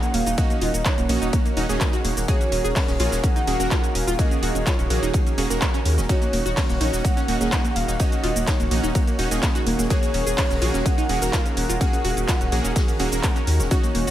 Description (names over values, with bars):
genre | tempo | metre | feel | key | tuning
progressive house | 126 BPM | 4/4 | straight | unclear | A4 = 440 Hz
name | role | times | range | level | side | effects
warm velvety synth lead | melody | 0.0-14.1 s | Db5 to Gb5 | -30 LUFS | left 1 dB | chorus, tape echo
warm analog pad | sustained chords | 0.0-14.1 s | Eb3 to Gb5 | -30 LUFS | right 2 dB | chorus, sidechain pumping
analog pluck | arpeggios | 0.0-14.1 s | Bb3 to Ab4 | -28 LUFS | right 1 dB | chorus, sidechain pumping, tape echo
supersaw stab | stabs | 0.0-14.1 s | Bb3 to Bb4 | -29 LUFS | right 2 dB | vintage 12-bit sampler grit, sidechain pumping, tape echo
deep house drum kit | drums | 0.0-14.1 s | handclaps, hi-hat, ride cymbal, shaker | -29 LUFS | equal | overdrive
saturated sub bass | bass | 0.1-14.1 s | Eb1 to Eb2 | -25 LUFS | equal | sidechain pumping
vintage drum kit | drums | 0.1-14.1 s | hi-hat, ride cymbal, snare drum | -38 LUFS | right 1 dB | none
electronic kick drum | drums | 0.4-13.8 s | none | -21 LUFS | equal | none
room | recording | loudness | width
light reverb, digital ambience | none | -19 LUFS | side -12 dB against mid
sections
0.0-14.1 A section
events
none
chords
0.0 Gbadd9/Eb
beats
| 0.38 0.86 1.33 1.81 | 2.29 2.76 3.24 3.71 | 4.19 4.67 5.14 5.62 | 6.09 6.57 7.05 7.52 | 8.00 8.47 8.95 9.43 | 9.90 10.38 10.86 11.33 | 11.81 12.29 12.76 13.24 | 13.71